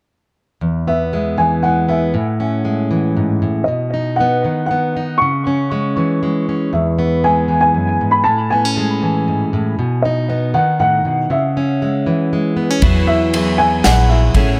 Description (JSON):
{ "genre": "indie folk with a building arrangement", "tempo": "118 BPM", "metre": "3/4", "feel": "straight", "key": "E major", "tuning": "A4 = 439 Hz", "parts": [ { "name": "fingerpicked plugged-in steel-string acoustic guitar", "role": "accompaniment", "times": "0.6-12.8 s", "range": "E2 to D#4", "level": "-19 LUFS", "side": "equal", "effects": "none" }, { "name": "dark upright piano", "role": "melody", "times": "0.9-14.6 s", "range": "D#5 to C#6", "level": "-20 LUFS", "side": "equal", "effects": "dub echo" }, { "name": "picked twelve-string acoustic guitar", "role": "accompaniment", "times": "12.8-14.6 s", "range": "E3 to G#4", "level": "-20 LUFS", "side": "equal", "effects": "none" }, { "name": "upright bass", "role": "bass", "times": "12.8-14.6 s", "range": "A1 to E2", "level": "-18 LUFS", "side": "equal", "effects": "none" }, { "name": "unplugged drum kit", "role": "drums", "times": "12.8-14.5 s", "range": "kick drum, ride cymbal, snare drum", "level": "-20 LUFS", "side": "equal", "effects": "none" } ], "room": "light reverb", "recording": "echo-heavy mix", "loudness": "-16 LUFS", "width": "mono", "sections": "0.6-12.8 A section; 12.8-14.6 A section", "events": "none", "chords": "0.6 E; 2.1 Amaj7; 3.7 B; 5.2 C#m; 6.7 Eadd9; 8.3 Amaj7; 9.8 B; 11.3 C#m; 12.8 Eadd9" }